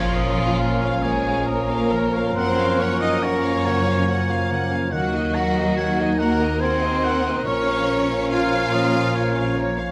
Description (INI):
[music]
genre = classical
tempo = 71 BPM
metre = 3/4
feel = rubato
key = Bb minor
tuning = A4 = 440 Hz
[part]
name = warm symphonic violin section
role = melody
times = 0.0-9.9 s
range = Db5 to Gb5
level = -33 LUFS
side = equal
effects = none
[part]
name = clear oboe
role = second line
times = 0.0-9.9 s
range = Db5 to Bb5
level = -32 LUFS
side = equal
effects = none
[part]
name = concert flute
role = second line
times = 0.0-9.5 s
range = F5 to F6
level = -32 LUFS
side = equal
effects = none
[part]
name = dark clarinet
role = second line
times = 0.0-9.9 s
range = Bb3 to Db4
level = -34 LUFS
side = equal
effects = none
[part]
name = warm studio violin section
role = second line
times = 0.0-9.6 s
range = F4 to F5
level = -30 LUFS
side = equal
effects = none
[part]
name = dark symphonic viola section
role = accompaniment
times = 0.0-9.9 s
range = Bb3 to Db5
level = -33 LUFS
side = equal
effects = none
[part]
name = mellow bassoon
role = accompaniment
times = 0.0-9.9 s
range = Eb3 to F3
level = -32 LUFS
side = equal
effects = none
[part]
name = mellow French horn section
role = sustained chords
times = 0.0-9.9 s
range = Eb3 to Eb4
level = -34 LUFS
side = equal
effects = none
[part]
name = concert harp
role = arpeggios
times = 0.0-9.9 s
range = Gb2 to Bb4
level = -35 LUFS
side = equal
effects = none
[part]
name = dark trumpet section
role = stabs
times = 0.0-9.8 s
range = Bb4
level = -32 LUFS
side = equal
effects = none
[part]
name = rich symphonic cello section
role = bass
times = 0.0-9.6 s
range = F3 to F4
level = -29 LUFS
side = equal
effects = none
[part]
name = warm symphonic double bass section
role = bass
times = 0.0-9.9 s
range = Bb1 to Gb2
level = -29 LUFS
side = equal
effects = none
[part]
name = timpani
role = percussion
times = 0.0-1.0, 7.5-8.7 s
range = Bb2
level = -40 LUFS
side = equal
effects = none
[sound]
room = light reverb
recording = none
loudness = -21 LUFS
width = mono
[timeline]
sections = 0.0-9.9 A section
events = none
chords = 0.0 Bbm; 2.4 Gbmaj7; 4.9 Ebm; 7.5 Bbm